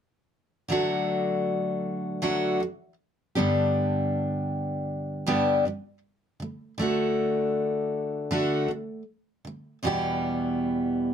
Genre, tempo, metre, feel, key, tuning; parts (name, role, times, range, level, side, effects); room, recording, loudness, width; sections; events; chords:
pop; 79 BPM; 4/4; swing 60% on 16ths; D major; A4 = 440 Hz
picked steel-string acoustic guitar; accompaniment; 0.7-11.1 s; E2 to G4; -24 LUFS; equal
moderate small room reverb, RT60 0.5 s; close, detailed microphones; -24 LUFS; side -8 dB against mid
0.7-11.1 A section
0.7 D; 3.4 G; 6.4 D; 9.8 Em